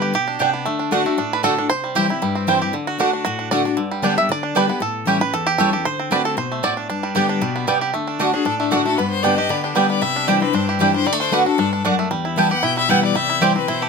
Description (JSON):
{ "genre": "bluegrass", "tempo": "231 BPM", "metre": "4/4", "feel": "straight", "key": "G major", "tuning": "A4 = 441 Hz", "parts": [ { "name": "bluegrass banjo", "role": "melody", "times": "0.0-13.9 s", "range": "D3 to E5", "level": "-22 LUFS", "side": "right 4 dB", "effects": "none" }, { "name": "picked steel-string acoustic guitar", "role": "accompaniment", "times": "0.0-13.9 s", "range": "E2 to G4", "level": "-21 LUFS", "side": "left 6 dB", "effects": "none" }, { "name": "mandolin", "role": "stabs", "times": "0.4-13.5 s", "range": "A3 to A5", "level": "-20 LUFS", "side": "right 6 dB", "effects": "none" }, { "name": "bright fiddle", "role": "second line", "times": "8.3-13.9 s", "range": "D4 to A5", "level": "-22 LUFS", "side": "left 8 dB", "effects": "none" } ], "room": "light reverb", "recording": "close, detailed microphones", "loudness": "-17 LUFS", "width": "side -5 dB against mid", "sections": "0.0-7.9 A section; 7.9-13.9 A section", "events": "five-string banjo solo 0.0-7.9; fiddle solo 7.9-13.9", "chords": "0.0 G; 0.7 D; 1.7 C; 2.7 D; 3.8 G; 4.8 A7; 5.9 D7; 6.9 G; 7.9 D; 9.0 G; 10.0 Cadd9; 11.1 D; 12.1 Em; 13.2 C" }